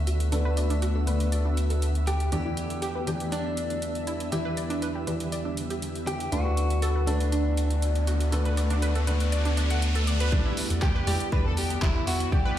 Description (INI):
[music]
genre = progressive house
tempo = 120 BPM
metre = 4/4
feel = straight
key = E minor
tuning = A4 = 441 Hz
[part]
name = shimmering ambient pad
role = sustained chords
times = 0.0-12.6 s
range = D3 to F#4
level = -36 LUFS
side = left 1 dB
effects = chorus, built-in reverb, phaser, sidechain pumping
[part]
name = dark grand piano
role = stabs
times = 0.0-12.6 s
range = D3 to D5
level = -34 LUFS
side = left 1 dB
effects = sidechain pumping, dub echo
[part]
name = saturated sub bass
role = bass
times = 0.0-12.4 s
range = E1 to E2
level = -26 LUFS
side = equal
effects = sidechain pumping
[part]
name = twinkling granular texture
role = texture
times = 0.0-10.3 s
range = E5 to E6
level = -46 LUFS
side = left 1 dB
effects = built-in reverb, sidechain pumping
[part]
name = analog pluck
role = arpeggios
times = 0.1-12.5 s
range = D4 to B5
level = -35 LUFS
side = right 2 dB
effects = chorus, sidechain pumping, dub echo
[part]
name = big-room dance drum kit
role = drums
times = 0.1-12.4 s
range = handclaps, hi-hat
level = -37 LUFS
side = right 1 dB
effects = overdrive, sidechain pumping on hats, small room ambience
[part]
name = direct-recorded clean electric guitar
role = melody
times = 2.1-12.6 s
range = D4 to B4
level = -33 LUFS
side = left 1 dB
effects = lush chorus, sidechain pumping, dub echo
[part]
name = riser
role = sound effects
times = 7.4-10.3 s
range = none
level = -36 LUFS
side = equal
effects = none
[part]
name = electronic kick drum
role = drums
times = 10.3-12.4 s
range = none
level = -24 LUFS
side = equal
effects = small room ambience
[part]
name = clear studio violin section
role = second line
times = 10.8-12.6 s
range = E4 to B4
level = -38 LUFS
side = left 2 dB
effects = sidechain pumping
[sound]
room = light reverb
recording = played on a big sound system in a bare room, large studio reverb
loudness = -24 LUFS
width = side -11 dB against mid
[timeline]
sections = 0.0-10.3 A section; 10.3-12.6 B section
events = filter sweep on synth pluck 0.0-10.3; filter sweep on ambient pad 0.0-10.3; riser 7.4-10.3; drop 10.3-12.6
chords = 0.0 Bm7/D; 2.3 Em7; 6.3 Bm7/D; 10.3 Em7